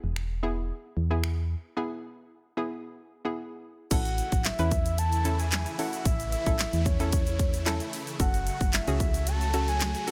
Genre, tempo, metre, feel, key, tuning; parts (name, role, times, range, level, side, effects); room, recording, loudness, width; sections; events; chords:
dance-pop; 112 BPM; 4/4; straight; A major; A4 = 440 Hz
hollow square pluck; accompaniment; 0.0-10.1 s; B3 to B4; -36 LUFS; equal; chorus
solid FM bass; bass; 0.0-9.9 s; E1 to E2; -31 LUFS; equal; sidechain pumping
pop drum kit; drums; 0.2-10.1 s; crash cymbal, finger snaps, handclaps, hi-hat, kick drum, snare drum; -31 LUFS; equal
soft octave-layered synth lead; melody; 3.9-10.1 s; C#5 to A5; -35 LUFS; equal; chorus, phaser
supersaw chords; sustained chords; 3.9-10.1 s; C#3 to F#4; -40 LUFS; equal; phaser, sidechain pumping
tube shaker; percussion; 3.9-10.1 s; -45 LUFS; equal
little or no reverb; -28 LUFS; mono
0.0-3.9 A section; 3.9-10.1 B section
break 1.8-3.9
0.0 E; 3.9 A; 8.2 F#m